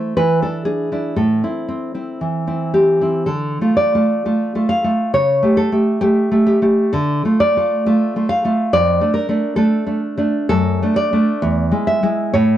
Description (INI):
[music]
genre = romantic piece for solo classical guitar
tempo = 55-70 BPM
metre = 2/4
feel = rubato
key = A minor, D minor from 3.3 s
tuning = A4 = 440 Hz
[part]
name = nylon-string guitar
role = solo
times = 0.0-12.6 s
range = E2 to F5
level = -14 LUFS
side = equal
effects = none
[sound]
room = moderate studio reverb, RT60 0.6 s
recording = worn, warbling old tape, cassette tape, warbly pitch drift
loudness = -14 LUFS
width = side -12 dB against mid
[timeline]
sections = 0.0-3.3 A section; 3.3-12.6 B section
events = none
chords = 0.2 E7; 1.2 Am; 3.3 Dm; 5.2 A7/C#; 6.9 Dm; 8.7 Dm/F; 10.5 D/F#; 11.4 E